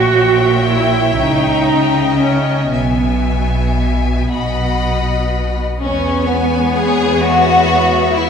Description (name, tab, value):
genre	classical, slow romantic movement for string orchestra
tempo	38-44 BPM (dotted quarters)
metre	6/8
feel	rubato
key	E major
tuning	A4 = 440 Hz
part	rich chamber violin section	melody	0.0-8.3 s	E5 to B5	-23 LUFS	left 7 dB	none
part	rich chamber violin section	second line	0.0-8.3 s	B3 to F#5	-18 LUFS	left 3 dB	none
part	rich chamber viola section	accompaniment	0.0-8.3 s	G#3 to C#5	-17 LUFS	right 2 dB	none
part	rich chamber double bass section	bass	0.0-8.3 s	A#1 to E2	-19 LUFS	right 1 dB	none
part	rich studio cello section	bass	0.0-8.3 s	A#2 to B3	-20 LUFS	right 1 dB	none
room	wet concert hall reverb, RT60 2.3 s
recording	recorded in a church or concert hall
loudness	-12 LUFS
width	side -7 dB against mid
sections	0.0-5.8 A section; 5.8-8.3 B section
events	none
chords	0.0 A#dim7; 2.7 E/B; 5.8 E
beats	1.19 | 2.73 4.30 | 5.83 7.22